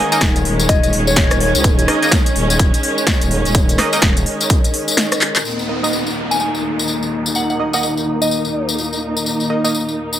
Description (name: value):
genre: bass house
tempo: 126 BPM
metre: 4/4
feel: swing 61% on 16ths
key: unclear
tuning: A4 = 439 Hz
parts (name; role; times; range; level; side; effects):
- soft synth bell; melody; 0.0-1.7, 6.3-8.7 s; Db5 to Ab5; -22 LUFS; left 1 dB; chorus, phaser, dub echo
- dark studio string section; sustained chords; 0.0-10.2 s; Eb2 to Eb4; -22 LUFS; equal; sidechain pumping, low-pass filter
- band-passed chord stab; stabs; 0.0-9.8 s; Bb3 to Eb5; -23 LUFS; right 3 dB; chorus, sidechain pumping, dub echo
- warbly tape-like pad; texture; 0.0-10.2 s; Eb4 to Ab6; -23 LUFS; left 1 dB; chorus, built-in reverb, sidechain pumping
- big-room dance drum kit; drums; 0.1-5.4 s; handclaps, hi-hat, rim click, snare drum; -18 LUFS; equal; low-pass filter on hats, low-pass filter on snare, low-pass filter on room
- tambourine; percussion; 0.1-10.2 s; none; -22 LUFS; left 4 dB; none
- growling FM bass; bass; 0.2-4.2 s; Eb1 to Db2; -20 LUFS; equal; overdrive, sidechain pumping
- electronic kick drum; drums; 0.2-4.6 s; none; -15 LUFS; equal; none
- downlifter; sound effects; 5.5-9.3 s; none; -26 LUFS; equal; none
room: light reverb, digital ambience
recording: none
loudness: -14 LUFS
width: side -11 dB against mid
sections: 0.0-5.5 A section; 5.5-10.2 B section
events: kick drops out 5.0-5.5; drum fill 5.2; filter sweep on string section 5.5-10.2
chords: 0.0 Eb5